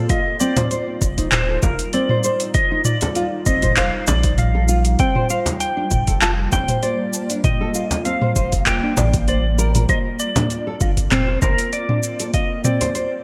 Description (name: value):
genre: organic downtempo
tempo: 98 BPM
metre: 4/4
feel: swing 54% on 16ths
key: unclear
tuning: A4 = 440 Hz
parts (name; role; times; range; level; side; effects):
- clean lap steel guitar; melody; 0.0-13.2 s; Bb4 to A5; -26 LUFS; equal; analog chorus, delay
- ethereal airy pad; sustained chords; 0.0-13.2 s; G3 to G4; -30 LUFS; equal; ensemble chorus, built-in reverb, sidechain pumping
- nylon-string guitar; arpeggios; 0.0-13.1 s; C4 to D5; -27 LUFS; equal; lush chorus, delay
- afro-pop drum kit; drums; 0.1-13.1 s; cabasa, handclaps, hi-hat, toms; -24 LUFS; equal; overdrive, gated reverb
- electronic kick drum; drums; 0.1-12.5 s; none; -23 LUFS; equal; overdrive
- frame drum; percussion; 0.6-12.9 s; none; -27 LUFS; equal; none
- warm sub bass; bass; 1.0-11.6 s; Eb1 to Bb1; -23 LUFS; equal; sidechain pumping
room: moderate plate reverb, RT60 2.1 s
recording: bright 1980s-style digital production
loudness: -19 LUFS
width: mono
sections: 0.0-13.2 A section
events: none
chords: 0.1 F9sus4; 5.0 Gm11